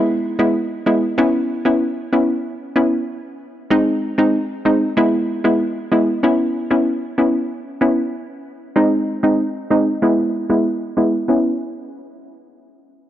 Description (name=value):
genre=dancehall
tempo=95 BPM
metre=4/4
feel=straight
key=C# minor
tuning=A4 = 440 Hz
part: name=hollow square pluck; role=solo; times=0.0-11.5 s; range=G#3 to E4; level=-16 LUFS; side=equal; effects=chorus, low-pass filter
room=light reverb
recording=dry, gritty hardware recording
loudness=-16 LUFS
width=side -12 dB against mid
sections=0.0-1.2 A section; 1.2-11.3 B section; 11.3-13.1 C section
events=filter sweep on synth pluck 1.2-11.3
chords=0.0 E; 1.2 C#m7; 3.7 G#; 5.0 E; 6.2 C#m7; 8.8 G#; 10.0 E; 11.3 C#m7